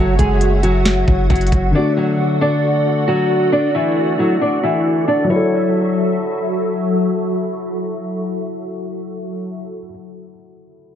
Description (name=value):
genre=hip hop, trap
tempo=135 BPM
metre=4/4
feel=half-time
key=F# minor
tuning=A4 = 440 Hz
part: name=nylon-string guitar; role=melody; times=0.0-6.6 s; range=E3 to D5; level=-18 LUFS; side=equal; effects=low-pass filter, analog delay
part: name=felt-muted upright piano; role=accompaniment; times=0.0-11.0 s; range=D3 to A4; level=-22 LUFS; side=left 2 dB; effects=low-pass filter, analog delay
part: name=hollow soft pad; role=sustained chords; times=0.0-9.6 s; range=F#3 to F#5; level=-22 LUFS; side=equal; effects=ensemble chorus
part: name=warm 808-style bass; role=bass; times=0.0-1.7 s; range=F#1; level=-16 LUFS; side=equal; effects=none
part: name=trap drum kit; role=drums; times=0.2-1.6 s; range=hi-hat, kick drum, snare drum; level=-18 LUFS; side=equal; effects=overdrive, vintage 12-bit sampler grit
room=moderate spring reverb, RT60 2.1 s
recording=echo-heavy mix, low-pass filter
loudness=-14 LUFS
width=side -9 dB against mid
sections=0.0-5.3 A section; 5.3-8.9 B section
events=none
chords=0.0 F#7(no3); 1.7 D; 5.3 F#m7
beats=0.41 0.85 1.30 | 1.74 2.19 2.63 3.08 | 3.52 3.97 4.41 4.86 | 5.30 5.74 6.19 6.63 | 7.08 7.52 7.97 8.41